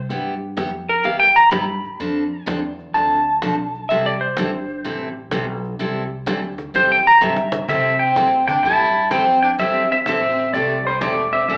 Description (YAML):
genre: country, western swing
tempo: 126 BPM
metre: 4/4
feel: swing 67% on 8ths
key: C major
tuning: A4 = 439 Hz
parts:
  - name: clean lap steel guitar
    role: second line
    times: 0.0-7.7 s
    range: Bb4 to B5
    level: -18 LUFS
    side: equal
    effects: slapback echo
  - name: upright bass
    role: bass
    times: 0.0-11.6 s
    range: E1 to C3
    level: -34 LUFS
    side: equal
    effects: none
  - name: picked steel-string acoustic guitar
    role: accompaniment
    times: 0.1-11.6 s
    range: C3 to A4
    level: -27 LUFS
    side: equal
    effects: slapback echo
  - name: cajon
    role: drums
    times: 0.1-11.6 s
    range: none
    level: -32 LUFS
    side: equal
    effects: slapback echo
  - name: pedal steel guitar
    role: melody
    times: 7.7-11.6 s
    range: C5 to A5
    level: -19 LUFS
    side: equal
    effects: slapback echo
  - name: clear fiddle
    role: second line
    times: 7.7-11.6 s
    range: G3 to E4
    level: -26 LUFS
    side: equal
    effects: slapback echo
room: moderate plate reverb, RT60 1.8 s, small room ambience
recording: live gig heard through the venue's PA, club reverb, AM radio sound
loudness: -19 LUFS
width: mono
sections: 0.0-7.7 A section; 7.7-11.6 B section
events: electric slide guitar solo 0.0-7.7; drum fill 7.2-7.7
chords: 0.1 G6; 2.0 F6; 3.9 C6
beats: | 0.10 0.57 1.05 1.52 | 2.00 2.47 2.94 3.42 | 3.89 4.37 4.84 5.32 | 5.79 6.27 6.74 7.21 | 7.69 8.16 8.64 9.11 | 9.59 10.06 10.54 11.01 | 11.49